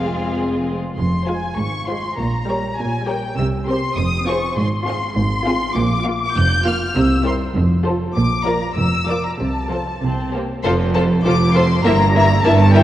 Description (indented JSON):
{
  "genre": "quick classical-period movement for string orchestra",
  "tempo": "100 BPM",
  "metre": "2/4",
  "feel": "straight",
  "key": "F minor, F major from 5.8 s",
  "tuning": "A4 = 440 Hz",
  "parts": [
    { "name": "rich studio violin section", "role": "melody", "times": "0.0-12.8 s", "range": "F5 to G6", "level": "-22 LUFS", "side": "left 3 dB", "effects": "none" },
    { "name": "rich studio violin section", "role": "second line", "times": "0.0-12.8 s", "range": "F4 to F5", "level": "-25 LUFS", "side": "left 2 dB", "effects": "none" },
    { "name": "rich studio viola section", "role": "accompaniment", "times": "0.0-12.8 s", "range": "F3 to G4", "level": "-24 LUFS", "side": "equal", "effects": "none" },
    { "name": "rich studio cello section", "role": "bass", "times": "0.0-12.8 s", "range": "F2 to C3", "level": "-20 LUFS", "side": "right 1 dB", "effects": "none" },
    { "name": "rich studio double bass section", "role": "bass", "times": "0.0-12.8 s", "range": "F1 to C2", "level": "-22 LUFS", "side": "right 2 dB", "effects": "none" }
  ],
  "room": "wet concert hall reverb, RT60 2.5 s",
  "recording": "worn, warbling old tape, cassette tape, warbly pitch drift",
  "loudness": "-16 LUFS",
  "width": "side -13 dB against mid",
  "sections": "1.0-10.6 A section; 10.6-12.8 B section",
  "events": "none",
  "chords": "0.0 Fm; 1.6 Fm/Ab; 2.2 Gdim/Bb; 3.4 C7(no3); 4.0 Fm; 4.6 Fm/Ab; 5.8 Bb; 7.0 C7; 7.6 F; 8.2 Bb; 9.4 F/C; 10.0 C5; 10.6 F; 11.9 Edim/G"
}